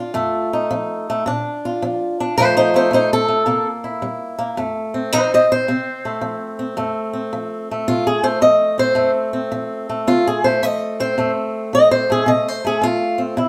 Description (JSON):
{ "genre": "acoustic country blues, solo or duo", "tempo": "109 BPM", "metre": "4/4", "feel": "swing 66% on 8ths", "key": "F mixolydian", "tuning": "A4 = 440 Hz", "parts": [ { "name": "fingerpicked swing-style acoustic guitar", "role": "solo", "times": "0.0-13.5 s", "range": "F2 to Eb5", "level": "-19 LUFS", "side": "equal", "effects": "none" } ], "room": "moderate stone room reverb, RT60 0.9 s", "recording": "band playing live in one room", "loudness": "-19 LUFS", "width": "mono", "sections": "0.0-4.6 A section; 4.6-13.5 A section", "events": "steel-string acoustic guitar solo 0.0-13.5", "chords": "0.2 F7; 1.3 Bb; 2.4 F7; 3.5 C7; 4.6 F7", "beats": "| 0.15 0.71 1.26 1.81 | 2.36 2.92 3.47 4.02 | 4.57 5.12 5.67 6.22 | 6.78 7.33 7.88 8.43 | 8.98 9.53 10.08 10.63 | 11.18 11.73 12.28 12.83 | 13.38" }